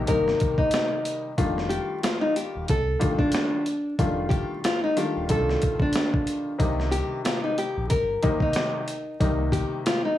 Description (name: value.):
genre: hip hop, boom-bap hip-hop.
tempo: 92 BPM.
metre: 4/4.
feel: swing 58% on 16ths.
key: C dorian.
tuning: A4 = 439 Hz.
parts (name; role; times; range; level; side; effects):
nylon-string guitar; melody; 0.0-10.2 s; D4 to Bb4; -26 LUFS; left 1 dB; high-pass filter, low-pass filter, tape echo.
dark upright piano; accompaniment; 0.0-10.0 s; C3 to F4; -29 LUFS; left 2 dB; cassette tape, high-pass filter, low-pass filter.
sub bass with octave; bass; 0.0-9.6 s; Eb1 to C2; -28 LUFS; equal; none.
boom bap sampler-style drum kit; drums; 0.1-10.0 s; hi-hat, kick drum, snare drum; -27 LUFS; equal; none.
room: light reverb.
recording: dry, gritty hardware recording, vinyl crackle, small room ambience.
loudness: -22 LUFS.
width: side -13 dB against mid.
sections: 0.0-10.2 A section.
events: none.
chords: 0.0 Cm7; 1.4 F13; 6.6 Cm7.